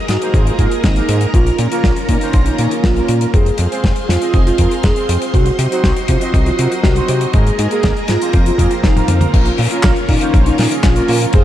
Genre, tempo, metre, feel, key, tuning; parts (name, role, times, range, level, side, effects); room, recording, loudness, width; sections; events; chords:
italo disco; 120 BPM; 4/4; straight; Bb minor; A4 = 442 Hz
string machine, full ensemble; sustained chords; 0.0-11.4 s; Db4 to C6; -22 LUFS; equal; ensemble chorus
soft octave-layered synth lead; melody; 0.1-11.4 s; Eb4 to Ab4; -20 LUFS; right 1 dB; chorus, phaser, tape echo
fat analog bass; bass; 0.1-11.4 s; F1 to C3; -16 LUFS; equal
damped 70s drum kit; drums; 0.1-11.4 s; crash cymbal, handclaps, hi-hat, snare drum, toms; -21 LUFS; left 1 dB; studio reverb
analog synth brass; stabs; 0.2-11.4 s; Bb3 to Eb5; -23 LUFS; right 3 dB; chorus
electronic kick drum; drums; 0.3-11.4 s; -14 LUFS; equal; overdrive, studio reverb
light reverb, small room ambience; dark, warm production; -12 LUFS; side -12 dB against mid
0.0-9.3 A section; 9.3-11.4 B section
drum fill 8.6-9.3
0.0 Absus2; 1.3 Bbm; 3.3 Fm; 5.3 Cdim; 7.3 Absus2; 8.3 Fsus4; 9.3 Bbm